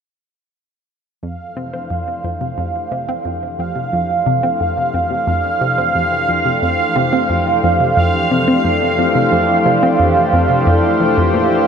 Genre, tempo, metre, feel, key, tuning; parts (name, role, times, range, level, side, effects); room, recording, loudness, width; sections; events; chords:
ambient, sequencer-driven space music; 89 BPM; 4/4; straight; F major; A4 = 439 Hz
lush unison pad; sustained chords; 1.2-11.7 s; F2 to C5; -19 LUFS; left 2 dB; chorus
analog pluck; riff; 1.2-11.5 s; F2 to C4; -19 LUFS; left 1 dB; chorus, phaser, ping-pong delay
bubbling stepped-filter texture; texture; 1.2-11.7 s; F5; -17 LUFS; right 4 dB; chorus, built-in reverb
wet lush hall reverb, RT60 2.7 s; -13 LUFS; side -7 dB against mid
1.2-11.7 A section
fade-in on synth arpeggio sound 1.2-11.7; fade-in on analog synth pad 1.2-11.7
1.2 F